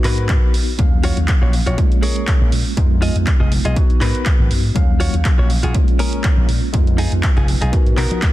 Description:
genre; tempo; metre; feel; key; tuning
filtered disco house; 121 BPM; 4/4; swing 54% on 16ths; Eb minor; A4 = 443 Hz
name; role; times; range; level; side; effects
tine electric piano; accompaniment; 0.0-8.3 s; Gb3 to F5; -24 LUFS; equal; overdrive, fast stereo tremolo, phaser, sidechain pumping, low-pass filter
direct-recorded clean electric guitar; riff; 0.0-8.3 s; Cb4 to Eb5; -26 LUFS; left 1 dB; sidechain pumping, low-pass filter
slap bass with an envelope filter; bass; 0.0-8.2 s; F1 to F3; -19 LUFS; equal; sidechain pumping, low-pass filter
punchy analog drum machine; drums; 0.0-8.3 s; handclaps, hi-hat, snare drum; -26 LUFS; right 1 dB; sidechain pumping on hats, studio ambience
electronic kick drum; drums; 0.3-8.3 s; none; -15 LUFS; equal; studio ambience
room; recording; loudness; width
digital ambience; dense, heavily limited modern master; -14 LUFS; side -15 dB against mid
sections
0.0-8.3 A section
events
none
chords
0.0 Abm9; 0.8 Ebm9; 1.8 Bbm7; 2.8 Fm7b5; 3.8 Abm9; 4.8 Ebm9; 5.7 Bbm7; 6.7 Fm7b5; 7.7 Abm9

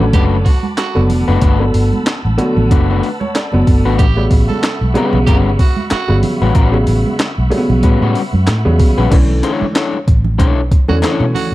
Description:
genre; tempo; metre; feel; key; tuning
funk; 94 BPM; 4/4; swing 56% on 16ths; B minor; A4 = 441 Hz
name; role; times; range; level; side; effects
electric guitar at the edge of break-up; accompaniment; 0.0-11.2 s; G3 to C#5; -19 LUFS; left 5 dB; none
tonewheel organ; sustained chords; 0.0-9.1 s; E5 to E6; -28 LUFS; left 1 dB; chorus vibrato, stopped rotary speaker
warm upright piano; stabs; 0.0-11.5 s; C#3 to D5; -17 LUFS; equal; none
vintage muted fingered electric bass; bass; 0.0-11.5 s; E#1 to B2; -14 LUFS; equal; none
growling tenor saxophone; second line; 0.1-6.2, 10.9-11.5 s; F#4 to A4; -23 LUFS; right 7 dB; none
breakbeat sampler-style drum kit; drums; 0.1-11.5 s; crash cymbal, handclaps, hi-hat, kick drum, snare drum; -14 LUFS; equal; none
congas; percussion; 0.1-11.5 s; none; -24 LUFS; right 5 dB; none
group handclap; percussion; 4.6-11.2 s; none; barely audible; none; none
room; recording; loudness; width
light reverb; dark, warm production; -11 LUFS; side -17 dB against mid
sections
0.0-9.1 A section; 9.1-11.5 B section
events
upright piano fill 2.1-4.0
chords
0.0 Gmaj9; 4.0 A13; 9.1 Bm11

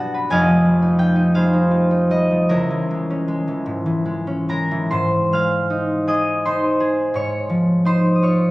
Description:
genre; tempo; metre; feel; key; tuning
classical, solo harp piece; 45-58 BPM (dotted quarters); 6/8; rubato; unclear; A4 = 440 Hz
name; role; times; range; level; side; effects
concert harp; solo; 0.0-8.5 s; F1 to F6; -16 LUFS; equal; none
room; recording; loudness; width
light reverb; recorded on a phone in the room, club reverb, compression; -16 LUFS; side -19 dB against mid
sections
0.0-4.9 A section; 4.9-8.5 B section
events
none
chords
0.3 Fm9; 2.5 Dbm6; 4.9 Ab6; 7.1 Dbadd9/Ab

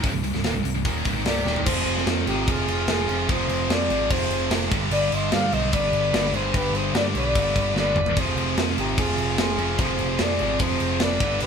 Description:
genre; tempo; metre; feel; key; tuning
heavy metal; 148 BPM; 4/4; straight; unclear; A4 = 440 Hz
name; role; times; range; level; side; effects
high-gain distorted guitar; riff; 0.0-11.5 s; C2 to G3; -28 LUFS; right 11 dB; distortion
scooped high-gain guitar; riff; 0.0-11.5 s; C2 to G3; -29 LUFS; left 8 dB; distortion
overdriven picked electric bass; bass; 0.0-11.5 s; C1 to G2; -28 LUFS; left 1 dB; none
tight metal drum kit; drums; 0.0-11.5 s; crash cymbal, hi-hat, kick drum, snare drum, toms; -26 LUFS; equal; none
breathy flugelhorn; melody; 1.3-11.5 s; G4 to F5; -26 LUFS; left 2 dB; none
high-gain lead guitar; second line; 1.3-11.5 s; Eb4 to D5; -32 LUFS; right 4 dB; distortion
room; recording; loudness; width
light reverb; band playing live in one room; -20 LUFS; side -6 dB against mid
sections
0.0-1.7 A section; 1.7-11.5 B section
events
drum fill 1.5, 7.8-8.2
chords
0.0 Cm; 1.7 Fm; 4.7 G; 8.2 Fm

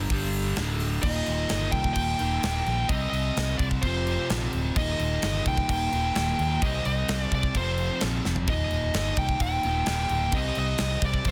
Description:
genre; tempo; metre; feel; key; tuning
hard rock; 129 BPM; 4/4; straight; unclear; A4 = 439 Hz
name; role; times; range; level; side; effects
crunchy overdriven guitar; riff; 0.0-11.3 s; D2 to C4; -33 LUFS; equal; none
fingered electric bass; bass; 0.0-11.3 s; D1 to Eb2; -31 LUFS; equal; none
tight metal drum kit; drums; 0.1-11.3 s; crash cymbal, hi-hat, kick drum, snare drum, toms; -32 LUFS; equal; none
high-gain lead guitar; melody; 1.0-11.3 s; C5 to G5; -32 LUFS; equal; distortion, digital delay
room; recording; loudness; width
studio reverb; dense, heavily limited modern master; -26 LUFS; mono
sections
0.0-1.0 A section; 1.0-11.3 B section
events
drum fill 8.3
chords
0.1 G5; 0.6 D5; 1.0 Eb; 2.9 Cm; 3.8 F5; 4.8 Eb; 6.6 Cm; 7.6 F5; 8.5 Eb; 10.3 Cm

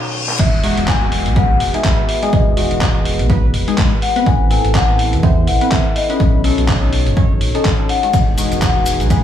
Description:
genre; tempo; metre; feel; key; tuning
deep house; 124 BPM; 4/4; swing 58% on 16ths; E major; A4 = 436 Hz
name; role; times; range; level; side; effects
dark analog pad; sustained chords; 0.0-9.2 s; B2 to C#5; -27 LUFS; right 2 dB; chorus, sidechain pumping
reverse cymbal and downlifter; sound effects; 0.0-4.3 s; none; -26 LUFS; left 1 dB; none
dusty soul sampler-style drum kit; drums; 0.3-9.2 s; crash cymbal, handclaps, hi-hat, ride cymbal; -23 LUFS; equal; low-pass filter on snare, low-pass filter on hats, low-pass filter on cymbals
marimba with soft mallets; melody; 0.4-9.2 s; D#5 to G#5; -21 LUFS; left 6 dB; diffuse ambient delay
round analog bass; bass; 0.4-9.2 s; E1 to E2; -18 LUFS; equal; sidechain pumping
electronic kick drum; drums; 0.4-9.2 s; none; -16 LUFS; equal; none
percussive organ stab; stabs; 0.6-9.2 s; G#3 to C#5; -21 LUFS; left 2 dB; chorus, phaser, cassette tape, sidechain pumping, diffuse ambient delay
maracas; percussion; 8.1-9.2 s; none; -28 LUFS; left 4 dB; none
soft string machine; texture; 8.1-9.2 s; G#5; -37 LUFS; equal; none
room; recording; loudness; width
moderate plate reverb, RT60 1.7 s, digital ambience; dreamy mix soaked in reverb, studio ambience; -12 LUFS; side -10 dB against mid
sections
0.4-9.2 A section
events
break 0.0-0.4; drum fill 0.0-0.4; reverse cymbal 0.0-0.4; drop 0.4-9.2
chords
0.4 Emaj9; 4.0 Amadd9; 6.2 B7; 8.1 Emaj9

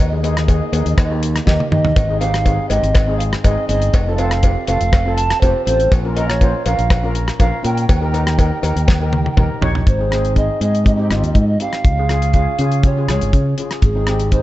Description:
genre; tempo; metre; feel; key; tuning
calypso; 121 BPM; 4/4; straight; Ab major; A4 = 440 Hz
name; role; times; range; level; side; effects
mellow hollow polished pan flute; melody; 0.0-14.4 s; Ab4 to A5; -22 LUFS; right 2 dB; none
fingered electric bass; bass; 0.0-14.4 s; F1 to Eb3; -18 LUFS; equal; none
damped 70s drum kit; drums; 0.0-14.4 s; hi-hat, kick drum, rim click, snare drum, toms; -16 LUFS; equal; none
steel pan; accompaniment; 0.1-14.4 s; Bb3 to Db5; -24 LUFS; left 1 dB; none
cowbell; percussion; 0.2-9.5 s; none; -29 LUFS; left 4 dB; none
room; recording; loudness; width
light reverb; dark, warm production, nothing above 8.0 kHz; -14 LUFS; side -16 dB against mid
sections
0.0-9.9 A section; 9.9-14.4 B section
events
drum fill 1.5-2.0, 8.9-9.9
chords
0.0 Ebsus4; 1.0 Eb; 2.0 Ab; 3.9 F; 5.9 Bbm; 7.9 Eb; 9.9 Ab; 11.8 Db; 13.8 Ab

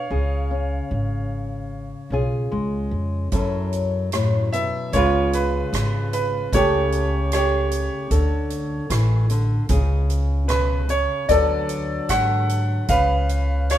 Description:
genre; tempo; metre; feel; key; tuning
folk; 75 BPM; 4/4; straight; unclear; A4 = 443 Hz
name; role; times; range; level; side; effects
clear upright piano; melody; 0.0-13.8 s; E#4 to F#5; -22 LUFS; right 2 dB; none
nylon-string guitar; accompaniment; 0.0-13.8 s; F#2 to B4; -26 LUFS; left 2 dB; none
upright bass; bass; 0.1-13.8 s; G#1 to G#2; -23 LUFS; equal; none
soft-mallet drum kit; drums; 3.3-13.8 s; hi-hat, kick drum, rim click; -28 LUFS; right 1 dB; none
room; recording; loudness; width
moderate studio reverb, RT60 0.5 s; minimal, uncompressed stereo recording; -19 LUFS; side -12 dB against mid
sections
0.0-3.3 A section; 3.3-13.8 B section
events
none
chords
0.1 C#; 3.3 F#m7; 4.9 C#7; 6.5 A7/C#; 8.1 D5; 9.7 G#madd11/C#; 11.3 Bm7/D; 12.9 C#7

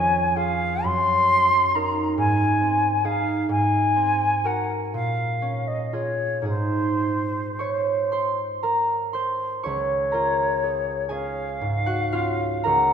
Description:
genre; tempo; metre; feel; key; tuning
classical, romantic duo for flute and harp; 34-47 BPM (dotted quarters); 6/8; rubato; Db major; A4 = 440 Hz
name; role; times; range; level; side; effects
concert flute; melody; 0.0-12.9 s; C5 to C6; -23 LUFS; left 2 dB; none
concert harp; accompaniment; 0.0-12.9 s; Db2 to Db6; -24 LUFS; right 2 dB; none
room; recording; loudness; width
moderate concert hall reverb, RT60 2.2 s; minimal, uncompressed stereo recording; -20 LUFS; side -8 dB against mid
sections
0.0-9.7 A section; 9.7-12.9 B section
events
none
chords
0.0 Db/F; 0.8 Ebm7/Gb; 2.2 Ab; 3.5 Ab9; 4.9 Bbm7; 6.5 Ab; 9.7 Db

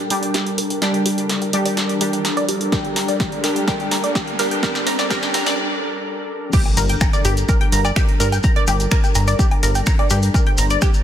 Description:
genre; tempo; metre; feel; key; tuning
melodic techno; 126 BPM; 4/4; straight; G minor; A4 = 440 Hz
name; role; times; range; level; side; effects
warm analog pad; sustained chords; 0.0-11.0 s; G3 to C5; -26 LUFS; left 1 dB; lush chorus, sidechain pumping
tight sequenced synth; arpeggios; 0.0-10.9 s; G4 to Bb5; -24 LUFS; equal; chorus, sidechain pumping, dub echo
synth brass stab; stabs; 0.0-5.6 s; G3 to G4; -23 LUFS; equal; chorus, phaser, sidechain pumping, dub echo
riser and impact; sound effects; 0.9-8.4 s; none; -29 LUFS; right 1 dB; none
punchy analog drum machine; drums; 0.1-11.0 s; crash cymbal, finger snaps, hi-hat, snare drum, woodblock; -24 LUFS; equal; overdrive, sidechain pumping on hats, high-pass filter on hats, soft clipping on snare, high-pass filter on snare, sidechain pumping on cymbals, high-pass filter on cymbals, sidechain pumping on perc, high-pass filter on perc
electronic kick drum; drums; 2.7-10.9 s; none; -18 LUFS; equal; overdrive
maracas; percussion; 6.5-11.0 s; none; -28 LUFS; left 3 dB; none
plucky analog bass; bass; 6.8-10.8 s; G1 to G2; -18 LUFS; equal; sidechain pumping
room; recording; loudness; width
moderate lush hall reverb, RT60 2.4 s; dense, heavily limited modern master, high-pass filter; -16 LUFS; side -10 dB against mid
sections
0.0-6.5 A section; 6.5-11.0 B section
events
build-up 0.0-6.5; drum fill 0.0-5.6; filter sweep on synth arpeggio sound 0.0-6.5; filter sweep on synth stab 0.0-6.5; riser 0.9-5.6; break 5.6-6.5; drop 6.5-11.0; impact 6.5-8.4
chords
0.0 Gmadd9

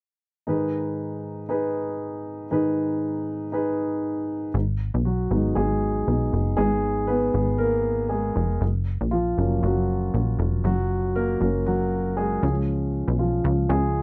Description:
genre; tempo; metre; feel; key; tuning
piano-driven pop; 118 BPM; 4/4; swing 56% on 16ths; unclear; A4 = 438 Hz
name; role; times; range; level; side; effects
dark concert grand piano; accompaniment; 0.5-14.0 s; G#2 to B4; -27 LUFS; equal; none
plucky analog bass; bass; 4.5-14.0 s; E#1 to C#2; -26 LUFS; equal; none
room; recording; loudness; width
light reverb; dry, close 1970s-style studio recording; -24 LUFS; mono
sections
0.5-4.5 A section; 4.5-14.0 B section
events
grand piano solo 4.5-14.0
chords
0.5 G#m; 8.6 F#; 12.4 C#

